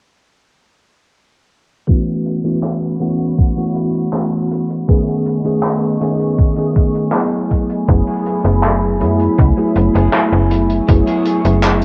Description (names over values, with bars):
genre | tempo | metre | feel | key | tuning
vaporwave | 80 BPM | 4/4 | straight | unclear | A4 = 439 Hz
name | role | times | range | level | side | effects
bell-like tine electric piano | accompaniment | 1.9-11.8 s | D#3 to G#4 | -18 LUFS | equal | ensemble chorus, vintage 12-bit sampler grit, cassette tape, tape echo
warbly tape-like pad | sustained chords | 2.9-11.8 s | A3 to C#6 | -28 LUFS | equal | chorus, built-in reverb, cassette tape
electronic kick drum | drums | 1.9-11.0 s | none | -16 LUFS | equal | cassette tape
warm soul drum kit | drums | 1.9-11.8 s | handclaps, hi-hat | -25 LUFS | equal | cassette tape
electric guitar at the edge of break-up | riff | 7.9-11.5 s | A3 to G#4 | -30 LUFS | equal | analog chorus, cassette tape, tape echo
slap-like FM bass | bass | 7.9-11.8 s | F#1 to F#2 | -17 LUFS | equal | none
room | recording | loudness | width
moderate spring reverb, RT60 1.9 s, small room ambience | home recording on cassette, low-pass filter | -16 LUFS | mono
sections
1.9-11.8 A section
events
filter sweep 1.9-11.8; clean electric guitar fill 11.6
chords
1.9 A69; 4.9 B13; 7.5 F#m11